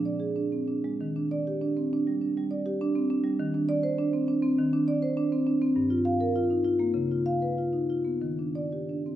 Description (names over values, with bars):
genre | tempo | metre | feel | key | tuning
classical, contemporary piece for solo marimba | 100 BPM | 4/4 | uneven beats, rubato | Eb major | A4 = 440 Hz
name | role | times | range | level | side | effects
marimba with medium mallets | solo | 0.0-9.2 s | G2 to F5 | -25 LUFS | right 1 dB | none
room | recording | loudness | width
wet recital hall reverb, RT60 1.5 s | minimal, uncompressed stereo recording | -25 LUFS | side -12 dB against mid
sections
0.0-9.2 A section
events
none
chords
0.0 Bb9 (rootless); 1.0 Ebmaj7; 3.4 Cmadd9/Eb; 5.8 Gm7; 7.0 Db9; 8.2 Ebmaj7